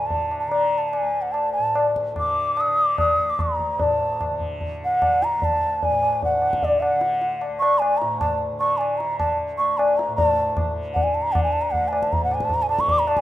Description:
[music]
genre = indian classical, Hindustani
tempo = 144-157 BPM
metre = 4/4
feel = straight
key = D major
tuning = A4 = 441 Hz
[part]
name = mellow bansuri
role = melody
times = 0.0-13.2 s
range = D5 to Eb6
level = -21 LUFS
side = right 1 dB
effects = none
[part]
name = tanpura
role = drone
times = 0.0-13.2 s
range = D2 to D3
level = -35 LUFS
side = right 2 dB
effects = stereo widening
[part]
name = tabla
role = percussion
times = 0.1-13.2 s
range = none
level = -24 LUFS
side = left 2 dB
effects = none
[sound]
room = light reverb, small room ambience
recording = rough home demo mix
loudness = -19 LUFS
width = side -14 dB against mid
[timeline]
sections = 0.0-10.2 A section; 10.2-13.2 B section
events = speeding up 0.0-13.2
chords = none

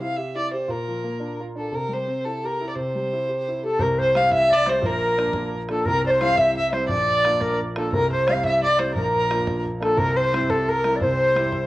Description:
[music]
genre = celtic folk, Celtic jig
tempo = 116 BPM (dotted quarters)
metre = 6/8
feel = straight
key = C mixolydian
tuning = A4 = 440 Hz
[part]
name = dark fiddle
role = melody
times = 0.0-11.7 s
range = A4 to F5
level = -22 LUFS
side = equal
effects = cassette tape
[part]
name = warm concert grand piano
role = accompaniment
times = 0.0-11.7 s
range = Bb1 to G4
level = -27 LUFS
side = right 1 dB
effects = cassette tape
[part]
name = bright wooden flute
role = second line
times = 3.6-11.7 s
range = A4 to F5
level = -24 LUFS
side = left 1 dB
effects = cassette tape
[part]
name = bodhran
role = percussion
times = 3.8-11.6 s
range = none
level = -32 LUFS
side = right 1 dB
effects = none
[sound]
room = wet spring reverb, RT60 1.2 s, studio reverb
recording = home recording on cassette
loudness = -19 LUFS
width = side -16 dB against mid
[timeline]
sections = 0.0-3.8 A section; 3.8-11.7 A section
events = none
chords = 0.0 C; 0.7 Bb; 1.7 C; 4.8 Bb; 5.9 C; 6.9 Bb; 7.9 C; 9.0 Bb; 10.0 C

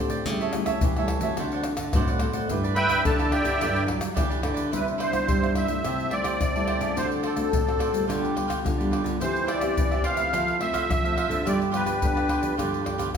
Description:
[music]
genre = samba and choro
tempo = 107 BPM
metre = 4/4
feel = straight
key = G major, C major from 4.7 s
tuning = A4 = 440 Hz
[part]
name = cavaquinho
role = accompaniment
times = 0.0-13.1 s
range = D4 to A5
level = -31 LUFS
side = right 5 dB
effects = none
[part]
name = nylon-string guitar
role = accompaniment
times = 0.0-13.2 s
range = F2 to B4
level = -31 LUFS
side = left 1 dB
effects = none
[part]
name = nylon-string guitar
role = bass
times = 0.0-13.2 s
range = G2 to G3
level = -30 LUFS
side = right 1 dB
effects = none
[part]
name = egg shaker, surdo, pandeiro and tamborim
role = percussion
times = 0.1-13.2 s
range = none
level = -28 LUFS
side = left 1 dB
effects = none
[part]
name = musette accordion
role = melody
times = 2.7-12.6 s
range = G4 to B5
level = -27 LUFS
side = right 1 dB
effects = none
[part]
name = breathy trombone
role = second line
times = 4.7-13.2 s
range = C4 to A4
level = -31 LUFS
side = left 3 dB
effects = none
[sound]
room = wet recital hall reverb, RT60 1.6 s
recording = recorded in a church or concert hall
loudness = -22 LUFS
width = side -7 dB against mid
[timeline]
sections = 0.0-4.7 A section; 4.7-13.2 B section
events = accordion solo 0.0-4.7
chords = 0.3 A7/C#; 1.4 D7; 2.5 G6; 4.7 Cmaj7; 5.8 Am7/C; 7.0 D7; 8.1 G7/D; 9.2 Cmaj7/E; 10.3 Fmaj7; 11.5 G7

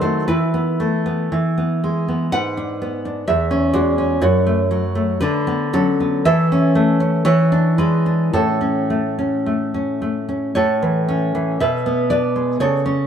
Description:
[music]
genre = romantic piece for solo classical guitar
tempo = 53-64 BPM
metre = 2/4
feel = rubato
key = A major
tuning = A4 = 440 Hz
[part]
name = nylon-string guitar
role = solo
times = 0.0-13.1 s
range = E2 to F#5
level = -16 LUFS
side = equal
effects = none
[sound]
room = moderate plate reverb, RT60 2.8 s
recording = none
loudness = -16 LUFS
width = side -8 dB against mid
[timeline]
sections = 0.0-10.6 A section; 10.6-13.1 B section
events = none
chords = 0.3 Esus4; 1.3 E; 2.3 G#dim; 3.3 C#m/E; 4.2 F#m; 5.2 Bm/D; 6.3 A/E; 7.3 E7; 8.3 A; 11.6 E7/B

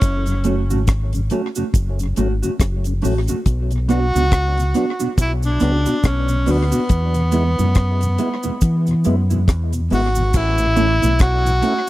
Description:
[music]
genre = roots reggae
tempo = 70 BPM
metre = 4/4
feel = swing 58% on 16ths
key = A major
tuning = A4 = 440 Hz
[part]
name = breathy tenor saxophone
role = melody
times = 0.0-11.9 s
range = B3 to F#4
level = -22 LUFS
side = equal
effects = tape echo
[part]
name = deep dub fingered electric bass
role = bass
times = 0.0-11.6 s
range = F#1 to E3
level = -18 LUFS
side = equal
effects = none
[part]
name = deep reggae drum kit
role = drums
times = 0.0-11.9 s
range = crash cymbal, hi-hat, kick drum, rim click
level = -19 LUFS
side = equal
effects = tape echo
[part]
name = cabasa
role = percussion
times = 0.0-11.9 s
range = none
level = -35 LUFS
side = right 7 dB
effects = none
[part]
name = mellow tonewheel organ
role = accompaniment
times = 0.3-11.7 s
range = E2 to E4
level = -27 LUFS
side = left 3 dB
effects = chorus vibrato, slow rotary speaker, tape echo
[part]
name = mellow electric guitar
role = accompaniment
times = 0.4-11.8 s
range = G#3 to F#4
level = -22 LUFS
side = right 3 dB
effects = wide subtle chorus, tape echo
[sound]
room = studio ambience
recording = dry, close 1970s-style studio recording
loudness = -16 LUFS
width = side -16 dB against mid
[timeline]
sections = 0.0-10.3 A section; 10.3-11.9 B section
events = none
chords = 0.0 F#m; 3.5 Bm; 6.9 E; 10.3 A

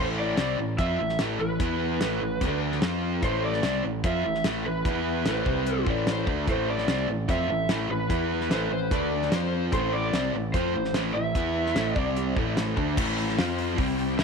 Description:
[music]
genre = classic rock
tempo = 148 BPM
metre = 4/4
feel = straight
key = A minor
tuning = A4 = 440 Hz
[part]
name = lead guitar through a small cranked amp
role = melody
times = 0.0-12.3 s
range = B4 to E5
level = -30 LUFS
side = right 2 dB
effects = overdrive, tape echo
[part]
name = overdriven electric guitar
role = riff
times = 0.0-14.2 s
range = A2 to F4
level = -30 LUFS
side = left 12 dB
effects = harmonic tremolo
[part]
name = sludgy distorted guitar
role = riff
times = 0.0-14.2 s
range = A2 to F4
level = -31 LUFS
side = right 14 dB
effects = overdrive
[part]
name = growling picked electric bass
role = bass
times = 0.0-14.2 s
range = A1 to F2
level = -32 LUFS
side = equal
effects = overdrive
[part]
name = damped 70s drum kit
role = drums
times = 0.4-14.2 s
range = crash cymbal, hi-hat, kick drum, snare drum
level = -29 LUFS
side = equal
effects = none
[part]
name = overdriven slide guitar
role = second line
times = 5.3-9.6 s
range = C5 to D5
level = -33 LUFS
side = left 11 dB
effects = none
[part]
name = picked steel-string acoustic guitar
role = accompaniment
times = 6.5-13.0 s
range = A2 to C5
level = -37 LUFS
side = right 11 dB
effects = none
[part]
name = bright tonewheel organ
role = sustained chords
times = 13.0-14.2 s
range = C4 to G5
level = -38 LUFS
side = equal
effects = slow rotary speaker, chorus vibrato
[sound]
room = light reverb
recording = 1960s-style stereo with parts hard left and right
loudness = -24 LUFS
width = side -5 dB against mid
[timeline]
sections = 0.0-13.0 A section; 13.0-14.2 B section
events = none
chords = 0.0 Am; 1.6 E5; 2.0 A5; 2.4 D5; 2.8 F5; 3.2 Am; 4.9 E5; 5.3 Am; 5.5 C5; 5.9 Am; 8.1 E5; 8.5 Am; 8.9 D5; 9.3 F5; 9.7 Am; 11.4 E5; 11.8 Am; 12.0 C5; 12.4 Am; 13.4 F5; 13.8 C5

